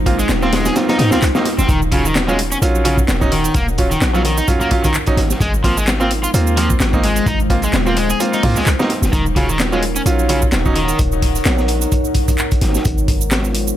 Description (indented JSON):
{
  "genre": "breakbeat, breaks",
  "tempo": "129 BPM",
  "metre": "4/4",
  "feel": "swing 56% on 16ths",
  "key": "Eb dorian",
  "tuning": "A4 = 440 Hz",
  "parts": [
    { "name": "deep dark ambient pad", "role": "sustained chords", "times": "0.0-13.8 s", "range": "Ab3 to Gb5", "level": "-23 LUFS", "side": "equal", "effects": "chorus, built-in reverb, sidechain pumping" },
    { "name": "warm 808-style bass", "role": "bass", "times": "0.0-13.7 s", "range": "Eb1 to Ab2", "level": "-19 LUFS", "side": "equal", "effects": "none" },
    { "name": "bright grand piano", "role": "stabs", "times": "0.1-10.8 s", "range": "Gb3 to F4", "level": "-21 LUFS", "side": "right 3 dB", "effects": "ping-pong delay" },
    { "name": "crunchy breakbeat drum kit", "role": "drums", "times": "0.1-13.7 s", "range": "hi-hat, kick drum, snare drum", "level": "-18 LUFS", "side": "equal", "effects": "none" },
    { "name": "house drum kit", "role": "drums", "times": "0.1-13.8 s", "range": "handclaps, hi-hat, shaker", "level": "-24 LUFS", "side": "right 2 dB", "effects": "none" },
    { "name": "crunchy overdriven guitar", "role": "riff", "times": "0.2-11.0 s", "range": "Db3 to Ab4", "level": "-21 LUFS", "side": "left 1 dB", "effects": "ping-pong delay" }
  ],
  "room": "light reverb",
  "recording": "none",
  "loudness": "-13 LUFS",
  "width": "side -12 dB against mid",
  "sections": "0.0-13.8 A section",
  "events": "none",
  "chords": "0.0 Ab6; 1.7 Ebm7; 5.4 Ab6; 9.1 Ebm7; 12.9 Ab6"
}